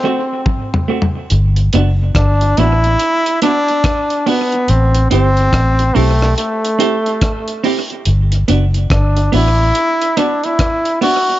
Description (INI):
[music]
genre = roots reggae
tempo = 71 BPM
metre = 4/4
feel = swing 63% on 16ths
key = G major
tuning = A4 = 441 Hz
[part]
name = brilliant trombone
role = melody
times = 0.0-11.4 s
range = A3 to F#4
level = -16 LUFS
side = equal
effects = tape echo
[part]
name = clean electric guitar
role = accompaniment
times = 0.0-11.3 s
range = A3 to G4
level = -19 LUFS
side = right 4 dB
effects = tremolo, tape echo
[part]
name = deep reggae drum kit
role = drums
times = 0.5-11.3 s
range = hi-hat, kick drum, rim click, toms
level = -19 LUFS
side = equal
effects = analog delay
[part]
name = vintage muted fingered electric bass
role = bass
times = 1.3-9.7 s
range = F#1 to B1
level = -12 LUFS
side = equal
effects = none
[sound]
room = light reverb, small room ambience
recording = nothing above 7.6 kHz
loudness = -12 LUFS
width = side -14 dB against mid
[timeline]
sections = 0.0-1.3 A section; 1.3-11.4 B section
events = drum fill 0.0-1.3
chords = 0.0 Am6; 1.3 Gmaj7; 4.7 Am7; 8.1 Gmaj7